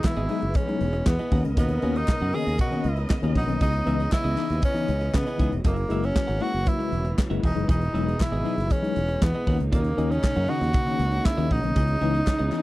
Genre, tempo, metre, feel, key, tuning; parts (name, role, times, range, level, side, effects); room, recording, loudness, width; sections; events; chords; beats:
disco; 118 BPM; 4/4; straight; B major; A4 = 441 Hz
bright tenor saxophone; melody; 0.0-12.6 s; A#3 to G#4; -29 LUFS; equal
clean electric guitar; accompaniment; 0.0-12.6 s; B3 to F#5; -34 LUFS; right 3 dB
mellow tine electric piano; accompaniment; 0.0-12.6 s; B2 to E4; -30 LUFS; left 6 dB; medium stereo tremolo
warm studio string section; sustained chords; 0.0-12.6 s; B2 to D#5; -32 LUFS; right 2 dB
modern studio drum kit; drums; 0.0-12.6 s; handclaps, hi-hat, kick drum, snare drum; -24 LUFS; equal
group handclap; percussion; 0.0-12.6 s; -43 LUFS; left 7 dB
fingered electric bass; bass; 0.2-12.5 s; E1 to C#3; -26 LUFS; equal
little or no reverb; dry, close 1970s-style studio recording; -22 LUFS; side -17 dB against mid
0.0-12.6 A section
0.0 Emaj7; 1.3 Bmaj9; 3.6 C#m9; 5.7 F#7; 7.4 Emaj7; 9.5 Bmaj9; 11.8 C#m9
0.04 0.55 1.06 | 1.57 2.08 2.59 3.10 | 3.61 4.12 4.63 5.14 | 5.65 6.16 6.67 7.18 | 7.69 8.20 8.71 9.21 | 9.72 10.23 10.74 11.25 | 11.76 12.27